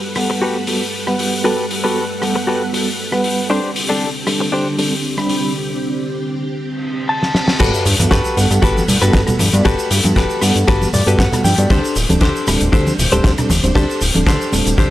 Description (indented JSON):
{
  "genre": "nu-disco, nu disco",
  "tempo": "117 BPM",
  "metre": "4/4",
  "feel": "swing 53% on 16ths",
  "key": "G major",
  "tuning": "A4 = 440 Hz",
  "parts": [
    { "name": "string machine, full ensemble", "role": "sustained chords", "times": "0.0-14.9 s", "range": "D3 to D6", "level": "-25 LUFS", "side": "right 1 dB", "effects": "ensemble chorus, sidechain pumping" },
    { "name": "mellow reed electric piano", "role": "accompaniment", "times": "0.2-14.9 s", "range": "G3 to B5", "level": "-20 LUFS", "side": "right 1 dB", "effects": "fast tremolo, sidechain pumping, analog delay" },
    { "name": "direct-recorded clean electric guitar", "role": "riff", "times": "0.2-14.9 s", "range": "D4 to A5", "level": "-20 LUFS", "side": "left 2 dB", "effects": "wide subtle chorus, low-pass filter, analog delay" },
    { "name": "damped 70s drum kit", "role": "drums", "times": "0.2-14.9 s", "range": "crash cymbal, hi-hat, ride cymbal, rim click, shaker, snare drum", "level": "-20 LUFS", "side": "left 1 dB", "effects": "studio reverb" },
    { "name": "reverse cymbal and sub drop", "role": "sound effects", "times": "6.8-9.7 s", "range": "none", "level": "-26 LUFS", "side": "equal", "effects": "none" },
    { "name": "fat analog bass", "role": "bass", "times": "7.6-14.9 s", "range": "D1 to G2", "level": "-17 LUFS", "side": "equal", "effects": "tube saturation" },
    { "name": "kick drum", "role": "drums", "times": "7.6-14.9 s", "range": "none", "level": "-16 LUFS", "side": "equal", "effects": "studio reverb" },
    { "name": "maracas and congas", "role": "percussion", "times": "7.6-14.9 s", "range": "none", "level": "-22 LUFS", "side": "right 1 dB", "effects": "none" }
  ],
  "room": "light reverb, small room ambience",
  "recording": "dry, gritty hardware recording, lossy compression artefacts",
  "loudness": "-14 LUFS",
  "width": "side -14 dB against mid",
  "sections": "0.0-7.6 A section; 7.6-14.9 B section",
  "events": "reverse cymbal 6.8-7.6; clean electric guitar fill 6.8-7.6, 10.7-11.7; drum fill 7.2-7.6; drop 7.6-14.9; impact 7.6-9.7",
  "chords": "0.0 Gmaj9; 3.5 D7sus4; 7.6 Gmaj9; 11.7 D7sus4"
}